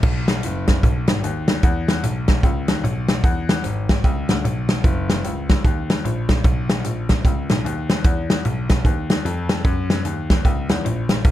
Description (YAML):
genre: uptempo gospel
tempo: 150 BPM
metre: 4/4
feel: swing 63% on 8ths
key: B major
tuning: A4 = 437 Hz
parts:
  - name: clear grand piano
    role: bass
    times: 0.0-11.3 s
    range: F#1 to F#2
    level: -23 LUFS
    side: left 1 dB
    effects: none
  - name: natural country drum kit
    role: drums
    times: 0.0-11.3 s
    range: crash cymbal, hi-hat, kick drum, snare drum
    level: -18 LUFS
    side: equal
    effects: none
room: little or no reverb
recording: dark, warm production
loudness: -17 LUFS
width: side -13 dB against mid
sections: 0.0-11.3 A section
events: none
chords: none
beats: | 0.03 0.43 0.83 1.23 | 1.64 2.04 2.44 2.84 | 3.24 3.64 4.04 4.44 | 4.84 5.24 5.64 6.04 | 6.44 6.84 7.25 7.64 | 8.05 8.45 8.85 9.25 | 9.65 10.05 10.45 10.85 | 11.25